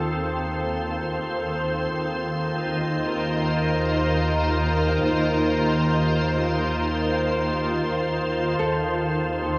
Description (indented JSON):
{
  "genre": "ambient",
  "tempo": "free time",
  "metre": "none",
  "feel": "none",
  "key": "unclear",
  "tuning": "A4 = 440 Hz",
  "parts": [
    { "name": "soft additive organ-like pad", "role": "sustained chords", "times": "0.0-9.6 s", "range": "Eb3 to C5", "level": "-25 LUFS", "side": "equal", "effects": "ensemble chorus, built-in reverb" },
    { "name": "rich chamber double bass section", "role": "bass", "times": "0.0-9.6 s", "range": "Eb2", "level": "-30 LUFS", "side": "equal", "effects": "none" },
    { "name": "Celtic harp", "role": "arpeggios", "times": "8.6-9.6 s", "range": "A4", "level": "-31 LUFS", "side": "equal", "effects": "tape echo" }
  ],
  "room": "wet cathedral reverb, RT60 5.5 s",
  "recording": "cassette tape",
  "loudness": "-24 LUFS",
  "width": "mono",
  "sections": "0.0-8.6 A section; 8.6-9.6 A section",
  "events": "fade-in on double bass section 0.0-8.6",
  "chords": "0.0 F7/Eb; 1.9 Bb5/Eb; 8.6 F7/Eb"
}